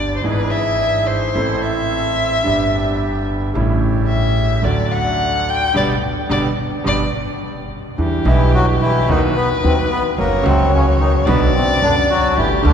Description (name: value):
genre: tango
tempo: 109 BPM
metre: 4/4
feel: rubato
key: G major, E minor from 8.0 s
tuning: A4 = 440 Hz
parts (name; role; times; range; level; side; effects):
- warm violin; second line; 0.0-12.7 s; G4 to G5; -20 LUFS; left 3 dB; none
- bright grand piano; accompaniment; 0.0-12.7 s; F#1 to A4; -20 LUFS; right 1 dB; none
- bandoneon; stabs; 0.0-7.0 s; A3 to A4; -28 LUFS; right 5 dB; none
- upright bass; bass; 0.0-12.7 s; F#1 to E2; -20 LUFS; right 1 dB; none
- bandoneon; melody; 8.3-12.7 s; C3 to B4; -19 LUFS; left 1 dB; none
room: wet cathedral reverb, RT60 4.6 s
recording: recorded in a church or concert hall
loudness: -14 LUFS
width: side -8 dB against mid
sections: 0.0-8.0 A section; 8.0-12.7 B section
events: violin solo 0.0-8.0; band accent 5.8-8.0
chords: 0.2 E7/G#; 1.4 Am; 2.5 G; 3.6 A7; 4.7 D; 5.8 G; 8.0 Em7; 9.1 B/D#; 10.2 F#; 11.3 Bm